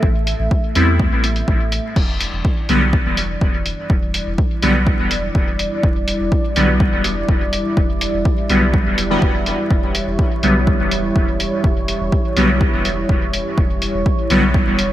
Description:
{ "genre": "dub techno", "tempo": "124 BPM", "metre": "4/4", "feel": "straight", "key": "unclear", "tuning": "A4 = 442 Hz", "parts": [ { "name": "dark analog pad", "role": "sustained chords", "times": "0.0-14.9 s", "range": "G3 to E5", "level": "-23 LUFS", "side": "right 1 dB", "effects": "chorus, sidechain pumping" }, { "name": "soft dub sub bass", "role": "bass", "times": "0.0-14.9 s", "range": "E1 to E2", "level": "-22 LUFS", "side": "equal", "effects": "sidechain pumping" }, { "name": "electronic kick drum", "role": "drums", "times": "0.0-14.6 s", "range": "none", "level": "-18 LUFS", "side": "equal", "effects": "overdrive" }, { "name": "lo-fi sampler-style drum kit", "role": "drums", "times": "0.3-14.9 s", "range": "crash cymbal, hi-hat", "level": "-24 LUFS", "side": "equal", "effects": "none" }, { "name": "resonant sweep polysynth", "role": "stabs", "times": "0.8-14.4 s", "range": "D3 to E4", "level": "-20 LUFS", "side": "equal", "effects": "chorus, phaser, sidechain pumping, dub echo" } ], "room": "moderate lush hall reverb, RT60 2.4 s", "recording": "bright 1980s-style digital production, vinyl crackle", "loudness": "-15 LUFS", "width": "side -13 dB against mid", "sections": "0.0-14.9 A section", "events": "none", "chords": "0.0 A5; 2.0 Em7", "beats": "| 0.03 0.51 1.00 1.48 | 1.96 2.45 2.93 3.42 | 3.90 4.38 4.87 5.35 | 5.83 6.32 6.80 7.29 | 7.77 8.25 8.74 9.22 | 9.71 10.19 10.67 11.16 | 11.64 12.12 12.61 13.09 | 13.58 14.06 14.54" }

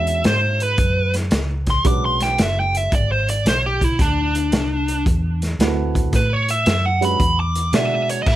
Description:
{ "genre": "electric blues shuffle", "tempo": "112 BPM", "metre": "4/4", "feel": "swing 67% on 8ths", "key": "unclear", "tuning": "A4 = 440 Hz", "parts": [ { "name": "dark smooth lead guitar", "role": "melody", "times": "0.0-8.4 s", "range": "D4 to D6", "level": "-20 LUFS", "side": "right 1 dB", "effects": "overdrive" }, { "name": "dark upright piano", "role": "accompaniment", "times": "0.0-8.3 s", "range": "G#3 to B5", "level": "-26 LUFS", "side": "right 5 dB", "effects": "none" }, { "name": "vintage muted fingered electric bass", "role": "bass", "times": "0.0-8.4 s", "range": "F#1 to B2", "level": "-22 LUFS", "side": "equal", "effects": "none" }, { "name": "crunchy breakbeat drum kit", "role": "drums", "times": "0.1-8.4 s", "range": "crash cymbal, hi-hat, kick drum, snare drum", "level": "-21 LUFS", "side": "equal", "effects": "none" } ], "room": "light reverb", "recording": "none", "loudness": "-16 LUFS", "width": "side -14 dB against mid", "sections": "0.0-8.3 A section", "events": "lead electric guitar solo 0.0-8.3", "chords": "0.0 E13 (rootless); 4.0 D13; 6.1 A69; 7.2 E9", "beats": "0.25 0.78 1.32 | 1.85 2.39 2.92 3.46 | 3.99 4.53 5.06 5.60 | 6.13 6.67 7.20 7.74 | 8.27" }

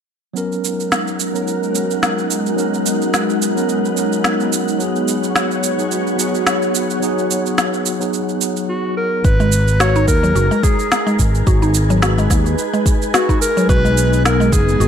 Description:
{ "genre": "organic downtempo", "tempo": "108 BPM", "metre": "4/4", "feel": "swing 56% on 16ths", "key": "G# minor", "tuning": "A4 = 440 Hz", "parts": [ { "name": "tine electric piano", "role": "accompaniment", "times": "0.3-9.3 s", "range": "F#3 to A#4", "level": "-21 LUFS", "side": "right 1 dB", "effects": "medium stereo tremolo, sidechain pumping, ping-pong delay" }, { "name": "ethereal airy pad", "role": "sustained chords", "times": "0.6-14.9 s", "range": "G#3 to A#5", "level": "-22 LUFS", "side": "left 1 dB", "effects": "ensemble chorus, built-in reverb, sidechain pumping" }, { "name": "wind-like tuned noise texture", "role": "texture", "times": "0.8-14.9 s", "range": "F#4 to G#5", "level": "-28 LUFS", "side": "equal", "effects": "built-in reverb" }, { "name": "electronic cabasa and snare drum", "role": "drums", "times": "0.4-14.9 s", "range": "none", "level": "-20 LUFS", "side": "right 1 dB", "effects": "small room ambience" }, { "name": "breathy clarinet", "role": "melody", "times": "8.7-14.9 s", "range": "F#4 to C#5", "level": "-20 LUFS", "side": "equal", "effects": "tape echo" }, { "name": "fretless electric bass", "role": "bass", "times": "9.2-14.9 s", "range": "F#1 to D#2", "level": "-16 LUFS", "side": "equal", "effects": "none" }, { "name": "electronic kick drum", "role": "drums", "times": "9.2-14.6 s", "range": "none", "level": "-16 LUFS", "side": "equal", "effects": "small room ambience" }, { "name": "mallet-like synth pluck", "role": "arpeggios", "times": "9.4-14.9 s", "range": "F#3 to F#4", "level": "-20 LUFS", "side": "equal", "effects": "chorus, ping-pong delay" } ], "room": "moderate lush hall reverb, RT60 1.7 s, digital ambience", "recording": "none", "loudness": "-14 LUFS", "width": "side -8 dB against mid", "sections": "0.4-9.2 A section; 9.2-14.9 B section", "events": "none", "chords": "0.4 G#m11; 4.8 B6; 9.2 G#m9; 13.7 B6", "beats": "| 0.36 0.91 1.47 2.02 | 2.58 3.14 3.69 4.25 | 4.80 5.36 5.91 6.47 | 7.03 7.58 8.14 8.69 | 9.25 9.80 10.36 10.91 | 11.47 12.03 12.58 13.14 | 13.69 14.25 14.80" }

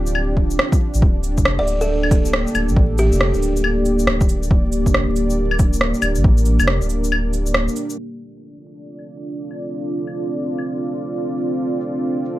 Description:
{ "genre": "future garage", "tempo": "138 BPM", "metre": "4/4", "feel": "swing 63% on 16ths", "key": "D minor", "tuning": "A4 = 439 Hz", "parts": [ { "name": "dark analog pad", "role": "sustained chords", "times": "0.0-12.4 s", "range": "Bb3 to D5", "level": "-23 LUFS", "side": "right 1 dB", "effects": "chorus, sidechain pumping" }, { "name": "warm sub bass", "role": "bass", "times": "0.0-7.7 s", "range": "D1 to A1", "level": "-20 LUFS", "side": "equal", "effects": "sidechain pumping" }, { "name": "electronic shaker, claves, rim click and cabasa", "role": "drums", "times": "0.1-12.3 s", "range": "none", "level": "-21 LUFS", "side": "equal", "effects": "none" }, { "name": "electronic kick drum", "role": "drums", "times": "0.4-6.4 s", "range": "none", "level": "-16 LUFS", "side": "equal", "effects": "none" }, { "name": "buzzing kalimba", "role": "melody", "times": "1.6-3.4 s", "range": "G4 to D5", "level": "-24 LUFS", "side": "equal", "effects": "dub echo" } ], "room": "light reverb", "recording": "vinyl crackle, low-pass filter", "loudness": "-16 LUFS", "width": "side -15 dB against mid", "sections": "0.0-8.0 A section; 8.0-12.4 B section", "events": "break 7.1-8.0; filter sweep 8.0-12.4", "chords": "0.0 Dm7; 1.0 Gmadd9/D; 8.0 Dm7", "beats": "0.16 0.59 | 1.03 1.46 1.90 2.33 | 2.77 3.20 3.64 4.07 | 4.51 4.94 5.38 5.81 | 6.25 6.68 7.12 7.55 | 7.99 8.42 8.86 9.29 | 9.72 10.16 10.59 11.03 | 11.46 11.90 12.33" }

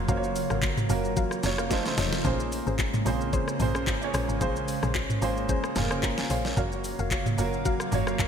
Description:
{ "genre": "amapiano", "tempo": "111 BPM", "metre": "4/4", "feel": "swing 55% on 16ths", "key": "Bb minor", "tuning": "A4 = 440 Hz", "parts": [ { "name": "warm grand piano", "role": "accompaniment", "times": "0.0-8.3 s", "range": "A3 to Bb5", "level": "-30 LUFS", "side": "right 4 dB", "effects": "wide subtle chorus" }, { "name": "hollow soft pad", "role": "sustained chords", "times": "0.0-8.3 s", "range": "Db3 to F5", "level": "-34 LUFS", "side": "left 1 dB", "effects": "ensemble chorus, sidechain pumping" }, { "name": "woody log drum bass", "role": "bass", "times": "0.0-8.3 s", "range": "F1 to Bb1", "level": "-32 LUFS", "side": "equal", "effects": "none" }, { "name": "soft round pluck", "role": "stabs", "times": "0.1-8.2 s", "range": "Db4 to F5", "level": "-34 LUFS", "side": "left 3 dB", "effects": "chorus, digital delay" }, { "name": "smooth R&B drum kit", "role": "drums", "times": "0.1-8.3 s", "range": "handclaps, hi-hat, kick drum, rim click, shaker, snare drum, toms", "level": "-29 LUFS", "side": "equal", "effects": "gated reverb" }, { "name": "congas and bongos", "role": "percussion", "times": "0.1-8.3 s", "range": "none", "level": "-39 LUFS", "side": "left 11 dB", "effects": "none" } ], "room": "moderate lush hall reverb, RT60 2.3 s", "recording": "bright 1980s-style digital production", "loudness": "-24 LUFS", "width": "side -7 dB against mid", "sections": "0.0-8.3 A section", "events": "grand piano fill 1.4-2.2; drum fill 1.7-2.2", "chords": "0.0 Gbmaj7; 1.7 F7b13; 2.2 Bbm9; 6.6 Gbmaj7", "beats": "| 0.09 0.63 1.17 1.71 | 2.25 2.79 3.33 3.87 | 4.41 4.95 5.49 6.03 | 6.57 7.11 7.65 8.19" }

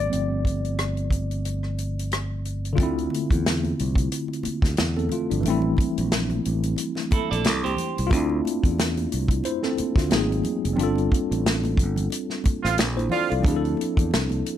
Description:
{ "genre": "R&B, neo-soul", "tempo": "90 BPM", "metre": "4/4", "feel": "swing 55% on 16ths", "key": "D minor", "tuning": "A4 = 440 Hz", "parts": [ { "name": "tine electric piano", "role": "accompaniment", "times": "0.0-14.6 s", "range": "D3 to F5", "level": "-26 LUFS", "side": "left 1 dB", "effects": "medium stereo tremolo" }, { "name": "fingered electric bass", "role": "bass", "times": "0.0-14.4 s", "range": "F1 to E2", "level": "-26 LUFS", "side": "equal", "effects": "none" }, { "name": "warm soul drum kit", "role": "drums", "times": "0.1-14.6 s", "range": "hi-hat, kick drum, rim click, snare drum", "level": "-24 LUFS", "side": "equal", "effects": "none" }, { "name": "congas", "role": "percussion", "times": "2.8-14.4 s", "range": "none", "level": "-35 LUFS", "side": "right 3 dB", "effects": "none" }, { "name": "semi-hollow electric guitar", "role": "second line", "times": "7.1-8.1 s", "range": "E4 to D5", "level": "-27 LUFS", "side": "right 8 dB", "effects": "spring reverb" }, { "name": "warm horn section", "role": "stabs", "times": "12.6-13.3 s", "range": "D3 to F4", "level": "-25 LUFS", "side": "right 9 dB", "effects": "none" } ], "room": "little or no reverb", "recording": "none", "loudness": "-21 LUFS", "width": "side -11 dB against mid", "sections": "0.0-2.8 A section; 2.8-14.6 B section", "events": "tine electric piano solo 0.0-2.8; break 1.4-2.8; band accent 10.8-13.4", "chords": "0.1 G7sus4; 2.8 Dm9; 5.4 Am7; 8.1 Dm9; 10.1 G#9; 10.8 G7sus4; 13.4 Dm9", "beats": "| 0.11 0.78 1.44 2.11 | 2.78 3.44 4.11 4.78 | 5.44 6.11 6.78 7.44 | 8.11 8.78 9.44 10.11 | 10.78 11.44 12.11 12.78 | 13.44 14.11" }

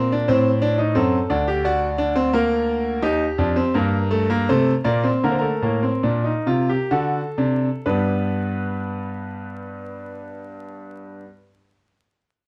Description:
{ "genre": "classical, baroque-style 3-part fugue for grand piano", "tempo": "60-88 BPM", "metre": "3/4", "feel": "straight", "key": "unclear", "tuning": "A4 = 440 Hz", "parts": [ { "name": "clear grand piano", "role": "solo", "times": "0.0-11.2 s", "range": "D2 to D5", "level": "-22 LUFS", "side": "equal", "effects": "none" } ], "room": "light reverb", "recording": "close, detailed microphones, vinyl crackle", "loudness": "-21 LUFS", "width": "mono", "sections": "0.0-7.8 A section; 7.8-12.5 B section", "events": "slowing down 2.0-7.8", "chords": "0.3 Adim; 1.0 D7; 2.3 Bb/D; 3.0 Eb; 4.5 Bbmaj9; 5.2 Gm; 6.9 D7; 7.8 G", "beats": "0.28 | 0.96 1.65 2.33 | 3.02 3.73 4.46 | 5.22 6.03 6.91 | 7.85 8.84 9.82 | 10.81" }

